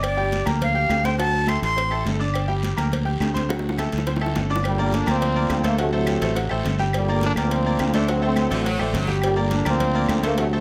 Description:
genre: latin, salsa.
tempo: 209 BPM.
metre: 4/4.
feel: straight.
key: G minor.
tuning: A4 = 436 Hz.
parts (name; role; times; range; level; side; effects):
breathy bright jazz flute; melody; 0.0-2.0 s; D5 to C6; -25 LUFS; equal; none.
bright concert grand piano; accompaniment; 0.0-10.6 s; F#3 to G6; -29 LUFS; equal; none.
fingered electric bass; bass; 0.0-10.6 s; G1 to D2; -26 LUFS; equal; none.
agogo bells and timbales; percussion; 0.0-10.5 s; none; -37 LUFS; equal; none.
claves; percussion; 0.0-10.2 s; none; -38 LUFS; equal; none.
congas; percussion; 0.0-10.6 s; none; -34 LUFS; equal; none.
cowbell and bongos; percussion; 0.0-10.5 s; none; -35 LUFS; equal; none.
guiro; percussion; 0.0-10.6 s; none; -41 LUFS; equal; none.
clear trombone section; melody; 4.7-10.6 s; A2 to D4; -26 LUFS; equal; none.
edgy saxophone section; second line; 8.5-9.2 s; D3 to F#3; -31 LUFS; equal; none.
room: light reverb.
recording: close, detailed microphones.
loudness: -22 LUFS.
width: mono.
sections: 0.0-4.6 A section; 4.6-10.6 B section.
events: drum fill 3.5-4.6, 8.5-9.2.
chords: 0.0 Gm7; 1.2 D7; 2.3 Gm; 3.5 D7; 4.6 Gm7; 5.8 D7; 6.9 Gm7; 8.1 D7; 9.2 Gm7.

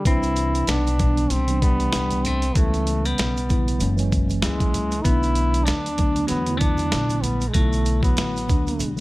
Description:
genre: hip hop, jazz-hop.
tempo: 96 BPM.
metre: 4/4.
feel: swing 57% on 16ths.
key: unclear.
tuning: A4 = 440 Hz.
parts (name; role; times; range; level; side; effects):
trombone with metal mute; melody; 0.0-8.9 s; G#3 to E4; -26 LUFS; equal; none.
mellow tine electric piano; accompaniment; 0.0-9.0 s; B2 to B4; -27 LUFS; right 1 dB; medium stereo tremolo.
semi-hollow electric guitar; second line; 0.1-8.9 s; E3 to C4; -31 LUFS; left 3 dB; tape echo.
upright bass; bass; 0.1-9.0 s; F#1 to E2; -24 LUFS; equal; none.
dusty soul sampler-style drum kit; drums; 0.1-9.0 s; hi-hat, kick drum, snare drum; -23 LUFS; equal; none.
maracas and congas; percussion; 0.1-9.0 s; none; -36 LUFS; right 2 dB; none.
room: studio ambience.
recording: none.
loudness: -19 LUFS.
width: side -19 dB against mid.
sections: 0.1-9.0 A section.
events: none.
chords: 0.1 Cmaj7; 2.6 C#m7b5; 3.8 F#7; 5.1 Bm7.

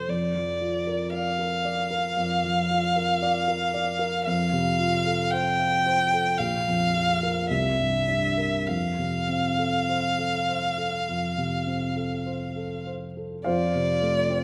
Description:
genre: classical, romantic duo for violin and grand piano.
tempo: 49-58 BPM.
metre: 4/4.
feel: rubato.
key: F major.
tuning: A4 = 440 Hz.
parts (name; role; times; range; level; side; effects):
rich violin; melody; 0.0-14.4 s; C5 to G5; -28 LUFS; equal; none.
dark baby grand piano; accompaniment; 0.0-14.4 s; Bb1 to F5; -29 LUFS; equal; none.
room: wet recital hall reverb, RT60 1.7 s.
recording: none.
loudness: -25 LUFS.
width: mono.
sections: 0.0-13.5 A section.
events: none.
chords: 0.1 Bb/F; 4.3 F; 6.4 Bb5; 7.5 C9; 8.7 F.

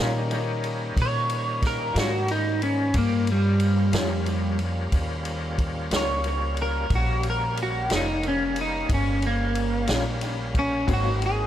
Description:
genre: slow blues.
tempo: 60 BPM (dotted quarters).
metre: 12/8.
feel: straight.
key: Eb mixolydian.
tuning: A4 = 443 Hz.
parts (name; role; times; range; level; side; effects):
electric guitar at the edge of break-up; melody; 0.0-11.5 s; G3 to Db5; -26 LUFS; equal; analog chorus, analog delay.
electric guitar through a small old amp; accompaniment; 0.0-11.1 s; Ab2 to F4; -33 LUFS; left 2 dB; tremolo, analog delay.
bright tonewheel organ; sustained chords; 0.0-11.5 s; Eb3 to F5; -33 LUFS; equal; slow rotary speaker, overdrive, chorus vibrato.
upright bass; bass; 0.0-11.5 s; F1 to Bb2; -27 LUFS; equal; none.
vintage drum kit; drums; 0.3-11.4 s; kick drum, ride cymbal, snare drum; -29 LUFS; equal; analog delay.
room: light reverb.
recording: echo-heavy mix.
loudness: -22 LUFS.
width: side -11 dB against mid.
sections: 0.0-11.5 A section.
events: clean electric guitar solo 0.0-11.5.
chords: 0.0 Eb9; 10.9 Ab9.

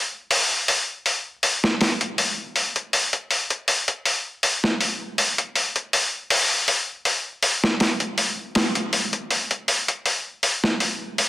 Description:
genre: trip hop.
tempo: 80 BPM.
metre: 4/4.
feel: swing 53% on 16ths.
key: none.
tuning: none.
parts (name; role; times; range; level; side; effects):
boom bap sampler-style drum kit; drums; 0.3-11.3 s; hi-hat, snare drum; -20 LUFS; left 1 dB; vintage 12-bit sampler grit.
room: moderate echo chamber reverb, RT60 2.0 s.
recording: dense, heavily limited modern master, vinyl crackle.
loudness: -20 LUFS.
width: side -17 dB against mid.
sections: 0.0-11.3 A section.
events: none.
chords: none.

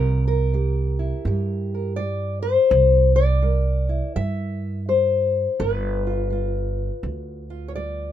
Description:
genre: acoustic country blues, solo or duo.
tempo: 83 BPM.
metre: 4/4.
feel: swing 63% on 8ths.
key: unclear.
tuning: A4 = 440 Hz.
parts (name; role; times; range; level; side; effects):
fingerpicked old ladder-braced acoustic guitar; melody; 0.0-8.1 s; G2 to E5; -22 LUFS; left 4 dB; none.
upright bass; bass; 0.0-8.1 s; G1 to G2; -22 LUFS; right 2 dB; none.
room: little or no reverb.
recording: minimal, uncompressed stereo recording.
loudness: -19 LUFS.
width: side -11 dB against mid.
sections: 0.0-8.1 A section.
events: none.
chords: 0.0 C7; 5.6 G7.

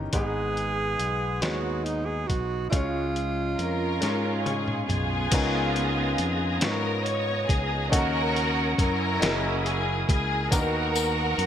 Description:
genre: slow gospel.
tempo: 46 BPM (dotted quarters).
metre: 6/8.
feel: straight.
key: unclear.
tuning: A4 = 439 Hz.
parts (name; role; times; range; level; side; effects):
clear baby grand piano; accompaniment; 0.0-11.5 s; G#2 to C#6; -30 LUFS; left 2 dB; none.
fingered electric bass; bass; 0.0-11.5 s; F#1 to G#2; -30 LUFS; equal; none.
breathy tenor saxophone; melody; 0.1-4.8 s; D#4 to G#4; -30 LUFS; right 4 dB; ping-pong delay.
trip hop sampler-style drum kit; drums; 0.1-11.5 s; crash cymbal, hi-hat, kick drum, snare drum, toms; -28 LUFS; equal; none.
warm studio string section; melody; 3.6-11.5 s; B3 to C#5; -28 LUFS; equal; none.
bright tonewheel organ; sustained chords; 5.3-11.5 s; B3 to D#6; -34 LUFS; right 2 dB; fast rotary speaker, chorus vibrato.
tambourine; percussion; 10.5-11.4 s; none; -35 LUFS; left 10 dB; none.
room: light reverb, small room ambience.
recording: bright 1980s-style digital production.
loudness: -23 LUFS.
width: side -9 dB against mid.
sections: 0.0-5.3 A section; 5.3-11.5 B section.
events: drum fill 4.0-5.3; grand piano fill 4.0-5.3.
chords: 0.1 G#m; 2.7 C#; 5.3 C#13; 7.9 D#m7; 9.2 F#13; 10.5 Bmaj7/D#.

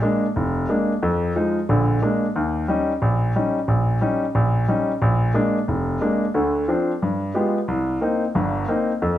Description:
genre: jazz.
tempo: 180 BPM.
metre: 4/4.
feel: swing 64% on 8ths.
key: Bb major.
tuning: A4 = 439 Hz.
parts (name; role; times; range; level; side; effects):
warm grand piano; accompaniment; 0.0-9.2 s; F1 to G4; -19 LUFS; equal; none.
room: wet large studio reverb, RT60 1.1 s.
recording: none.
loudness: -19 LUFS.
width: side -12 dB against mid.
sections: 0.0-9.2 A section.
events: none.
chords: 0.0 Bb7; 1.0 Fm7; 1.7 Bb7; 2.4 Eb7; 5.0 Bb7; 6.3 Dm7; 7.0 G7b9; 7.7 Cm7.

